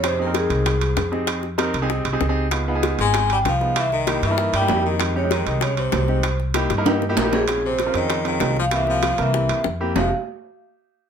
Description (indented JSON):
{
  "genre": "Afro-Cuban jazz",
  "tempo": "194 BPM",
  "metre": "4/4",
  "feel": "straight",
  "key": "F minor",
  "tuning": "A4 = 439 Hz",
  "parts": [
    { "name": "vibraphone with medium mallets", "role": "melody", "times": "0.0-10.1 s", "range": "Ab4 to Ab5", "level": "-24 LUFS", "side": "right 1 dB", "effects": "plate reverb" },
    { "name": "bright baritone saxophone", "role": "second line", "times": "0.0-10.1 s", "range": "Ab2 to Ab3", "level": "-28 LUFS", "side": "left 7 dB", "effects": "none" },
    { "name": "clear baby grand piano", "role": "accompaniment", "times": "0.0-10.1 s", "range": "Ab3 to G5", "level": "-25 LUFS", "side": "right 1 dB", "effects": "none" },
    { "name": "upright bass", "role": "bass", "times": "0.0-10.1 s", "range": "F1 to G2", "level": "-24 LUFS", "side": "equal", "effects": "none" },
    { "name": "bongos", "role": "percussion", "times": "0.0-10.0 s", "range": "none", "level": "-27 LUFS", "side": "left 8 dB", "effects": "none" },
    { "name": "timbales", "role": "percussion", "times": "0.0-10.0 s", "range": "none", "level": "-27 LUFS", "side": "right 6 dB", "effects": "none" }
  ],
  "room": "moderate studio reverb, RT60 0.6 s",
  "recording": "none",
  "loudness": "-18 LUFS",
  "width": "side -7 dB against mid",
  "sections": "0.0-7.5 A section; 7.5-10.0 B section; 10.0-11.1 C section",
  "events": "drum fill 6.6-7.5",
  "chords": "0.0 Fm7; 2.5 Db7; 3.8 C7#9; 5.0 Fm7; 6.2 C7#9; 7.5 Bbm7; 8.7 C7; 10.0 Fm7"
}